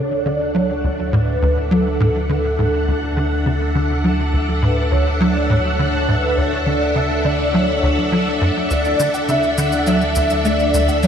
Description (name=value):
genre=ambient, sequencer-driven space music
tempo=103 BPM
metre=4/4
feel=straight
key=D major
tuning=A4 = 440 Hz
part: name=mellow horn-like synth lead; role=melody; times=0.0-11.1 s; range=A4 to F#5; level=-22 LUFS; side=equal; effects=ensemble chorus, tape echo
part: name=string machine, full ensemble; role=sustained chords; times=0.0-11.1 s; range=D4 to F#5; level=-21 LUFS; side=equal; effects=ensemble chorus
part: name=tight sequencer bass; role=riff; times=0.0-11.1 s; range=D2 to A3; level=-20 LUFS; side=equal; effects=ensemble chorus, tape echo
part: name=warm sub bass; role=bass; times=0.0-11.1 s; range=D2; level=-23 LUFS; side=equal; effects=none
part: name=cabasa and woodblock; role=percussion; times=8.7-11.1 s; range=none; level=-30 LUFS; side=left 2 dB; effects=overdrive
room=wet lush hall reverb, RT60 2.7 s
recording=none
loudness=-15 LUFS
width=side -8 dB against mid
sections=0.0-11.1 A section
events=none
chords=0.0 Dmaj7